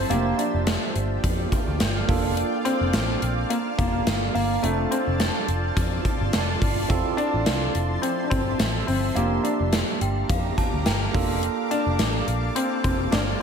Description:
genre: 1980s-style pop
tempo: 106 BPM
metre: 4/4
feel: swing 55% on 16ths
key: unclear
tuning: A4 = 440 Hz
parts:
  - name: warm baby grand piano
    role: melody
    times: 0.0-13.2 s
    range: A3 to D4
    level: -27 LUFS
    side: left 2 dB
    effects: slapback echo
  - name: bell-like tine electric piano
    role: accompaniment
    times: 0.0-13.4 s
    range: A3 to A4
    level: -30 LUFS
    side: right 7 dB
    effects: slapback echo
  - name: shimmering ambient pad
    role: sustained chords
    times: 0.0-13.4 s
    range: F3 to D6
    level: -31 LUFS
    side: equal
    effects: chorus, built-in reverb
  - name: vintage muted picked electric bass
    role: bass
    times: 0.0-13.3 s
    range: F1 to F2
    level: -26 LUFS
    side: equal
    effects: none
  - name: gated 80s drum kit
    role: drums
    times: 0.1-13.3 s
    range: hi-hat, kick drum, snare drum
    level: -25 LUFS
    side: equal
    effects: none
  - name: synth chime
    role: second line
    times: 10.0-11.6 s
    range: F5 to A5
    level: -33 LUFS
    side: left 1 dB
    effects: ensemble chorus, slapback echo, ping-pong delay
room: moderate lush hall reverb, RT60 2.1 s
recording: big arena sound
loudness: -21 LUFS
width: side -7 dB against mid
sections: 0.0-13.4 A section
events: none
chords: 0.1 Gm7/F; 2.1 Bbmaj7/F; 4.6 Dm7/F; 6.9 Fmaj7; 9.2 Gm7/F; 11.1 Bbmaj7/F

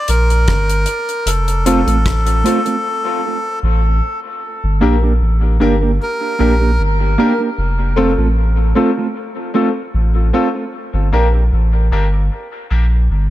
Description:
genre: dub reggae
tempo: 76 BPM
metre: 4/4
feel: straight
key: G minor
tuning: A4 = 442 Hz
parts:
  - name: melodica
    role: melody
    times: 0.0-6.8 s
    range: A4 to Bb4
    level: -21 LUFS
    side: equal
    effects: dub echo
  - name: warm sub bass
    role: bass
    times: 0.1-13.3 s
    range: F1 to Bb1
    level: -14 LUFS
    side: equal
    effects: none
  - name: deep reggae drum kit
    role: drums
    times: 0.1-2.8 s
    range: hi-hat, kick drum, rim click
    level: -21 LUFS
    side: left 1 dB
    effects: none
  - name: mellow electric guitar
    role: accompaniment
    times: 1.7-13.0 s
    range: A3 to Bb4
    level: -19 LUFS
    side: right 4 dB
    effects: high-pass filter, dub echo
  - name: bright concert grand piano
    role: stabs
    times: 1.7-12.8 s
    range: A3 to Bb4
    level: -22 LUFS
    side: left 5 dB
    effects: high-pass filter, dub echo
room: studio reverb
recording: echo-heavy mix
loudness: -13 LUFS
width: side -14 dB against mid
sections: 0.0-4.4 A section; 4.4-13.3 B section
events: break 0.0-1.3, 2.8-4.4; filter sweep 7.6-13.3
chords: 0.0 Gm; 1.3 F; 4.4 Gm; 7.6 F; 10.7 Gm

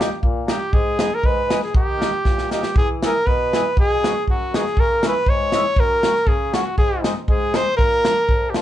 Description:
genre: alpine folk, alpine dance band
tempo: 119 BPM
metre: 2/4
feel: swing 53% on 8ths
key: G# minor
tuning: A4 = 440 Hz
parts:
  - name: clear flugelhorn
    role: melody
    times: 0.0-8.6 s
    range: E#4 to C#5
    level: -20 LUFS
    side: equal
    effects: none
  - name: mellow accordion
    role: accompaniment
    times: 0.0-8.6 s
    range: E#2 to G#4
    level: -26 LUFS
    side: left 2 dB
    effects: none
  - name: natural country drum kit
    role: drums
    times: 0.0-8.6 s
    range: hi-hat, kick drum, snare drum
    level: -20 LUFS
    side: equal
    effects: none
room: wet small room reverb, RT60 0.5 s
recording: heard from further back in the room, nothing above 10.3 kHz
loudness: -16 LUFS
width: side -12 dB against mid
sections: 0.0-8.6 A section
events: drum fill 2.2-2.8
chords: 0.0 D#/A#; 0.7 G#m; 1.7 D#; 2.8 E; 3.8 B6; 4.8 C#m; 5.8 F#; 6.8 G#; 7.8 A#

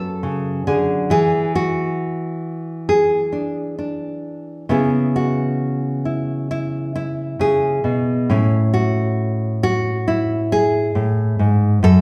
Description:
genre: folk, solo fingerstyle acoustic guitar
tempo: 67 BPM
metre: 4/4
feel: rubato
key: A major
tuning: A4 = 440 Hz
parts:
  - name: nylon-string guitar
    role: solo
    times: 0.0-12.0 s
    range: F#2 to A4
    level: -19 LUFS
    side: equal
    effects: none
room: wet large studio reverb, RT60 1.3 s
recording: band playing live in one room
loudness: -19 LUFS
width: mono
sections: 0.0-12.0 A section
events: none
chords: 0.0 F#m; 1.1 E7; 4.7 C#m7; 8.3 A

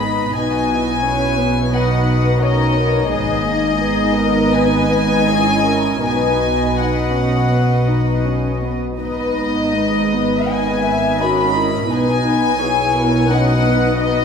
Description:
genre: cinematic, emotional film score for orchestra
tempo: 77-88 BPM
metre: 4/4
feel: rubato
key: unclear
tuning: A4 = 440 Hz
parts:
  - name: warm symphonic violin section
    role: melody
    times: 0.0-14.2 s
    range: D#5 to B5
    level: -20 LUFS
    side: left 4 dB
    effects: none
  - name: warm symphonic violin section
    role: second line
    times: 0.0-14.2 s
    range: G#4 to E5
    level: -22 LUFS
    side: left 3 dB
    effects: none
  - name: dark symphonic viola section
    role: accompaniment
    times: 0.0-14.2 s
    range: D#3 to F#4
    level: -20 LUFS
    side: right 1 dB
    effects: none
  - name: rich symphonic cello section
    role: bass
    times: 0.0-14.2 s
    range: G#2 to B2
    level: -22 LUFS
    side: right 2 dB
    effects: none
  - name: warm symphonic double bass section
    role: bass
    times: 0.0-14.2 s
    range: G#1 to B1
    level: -23 LUFS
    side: right 2 dB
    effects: none
room: wet scoring stage reverb, RT60 1.5 s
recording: heard from further back in the room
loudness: -14 LUFS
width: side -6 dB against mid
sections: 0.0-14.2 A section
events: none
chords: 0.4 B; 3.1 G#m; 6.0 B; 9.0 G#m; 11.9 B

